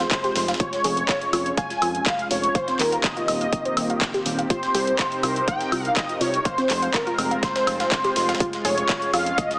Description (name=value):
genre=progressive house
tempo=123 BPM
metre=4/4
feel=straight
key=F minor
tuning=A4 = 441 Hz
part: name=wide unison lead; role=melody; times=0.0-9.6 s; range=Bb4 to Ab5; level=-24 LUFS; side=equal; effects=ensemble chorus, dub echo
part: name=supersaw pad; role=sustained chords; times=0.0-9.6 s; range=C3 to Bb4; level=-29 LUFS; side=equal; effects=sidechain pumping, low-pass filter
part: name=glassy wavetable pluck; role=arpeggios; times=0.0-9.5 s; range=C4 to F5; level=-29 LUFS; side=equal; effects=chorus, sidechain pumping, dub echo
part: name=fat analog bass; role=bass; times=0.0-9.3 s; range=Eb1 to C2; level=-29 LUFS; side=equal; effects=sidechain pumping
part: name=breakbeat sampler-style drum kit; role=drums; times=0.0-9.6 s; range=hi-hat, snare drum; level=-33 LUFS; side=equal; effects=none
part: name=house drum kit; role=drums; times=0.0-9.6 s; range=handclaps, hi-hat, woodblock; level=-26 LUFS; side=equal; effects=overdrive, sidechain pumping on hats, sidechain pumping on cymbals, sidechain pumping on perc
part: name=electronic kick drum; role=drums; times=0.1-9.5 s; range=none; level=-28 LUFS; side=equal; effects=none
room=moderate lush hall reverb, RT60 1.7 s, digital ambience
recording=heavily compressed radio sound, small speaker sound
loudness=-20 LUFS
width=side -25 dB against mid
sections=0.0-9.6 A section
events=filter sweep on synth arpeggio sound 0.0-9.6; filter sweep on supersaw synth 0.0-9.6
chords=0.0 Fm; 0.6 Db/F; 2.5 Eb6; 4.5 Cm7; 6.5 Fm; 8.4 Db/F